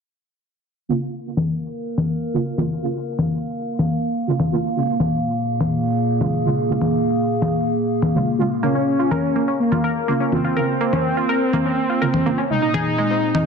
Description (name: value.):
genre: melodic techno.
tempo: 124 BPM.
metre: 4/4.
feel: straight.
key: Bb minor.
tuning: A4 = 440 Hz.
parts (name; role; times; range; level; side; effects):
synth brass stab; stabs; 0.9-13.5 s; C3 to F4; -24 LUFS; right 3 dB; chorus, cassette tape, dub echo.
warbly tape-like pad; texture; 1.3-13.5 s; Bb2 to F5; -23 LUFS; right 1 dB; chorus, built-in reverb.
congas; drums; 1.4-13.4 s; none; -22 LUFS; left 2 dB; low-pass filter on perc, studio reverb.
analog synth brass; melody; 8.6-13.4 s; Bb3 to Eb4; -20 LUFS; left 1 dB; chorus, dub echo.
analog pluck; arpeggios; 8.6-13.4 s; Ab3 to Bb4; -23 LUFS; right 1 dB; chorus, dub echo.
room: moderate digital room reverb, RT60 1.2 s.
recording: dense, heavily limited modern master, low-pass filter.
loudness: -18 LUFS.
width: side -6 dB against mid.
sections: 0.9-13.5 A section.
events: filter sweep on drum 0.9-13.5; filter sweep 0.9-13.5.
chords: 0.9 Bbm; 4.8 Db/Bb; 8.6 Bbm; 12.5 Ab/Bb.